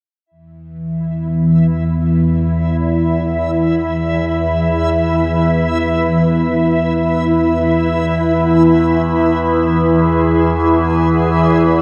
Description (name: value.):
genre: dark ambient drone.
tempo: free time.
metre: none.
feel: none.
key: E major.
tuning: A4 = 440 Hz.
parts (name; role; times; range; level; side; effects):
granular cloud pad; sustained chords; 1.5-11.8 s; E3 to B5; -20 LUFS; equal; built-in reverb.
overtone-sweeping drone; drone; 0.8-11.8 s; E2 to E3; -17 LUFS; equal; chorus, built-in reverb.
backwards swelling texture; texture; 1.1-11.8 s; E4 to E5; -23 LUFS; equal; built-in reverb.
room: wet huge ambient reverb, RT60 7.0 s.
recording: none.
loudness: -15 LUFS.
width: mono.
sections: 0.3-11.8 A section.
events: none.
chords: 0.3 E5.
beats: free time.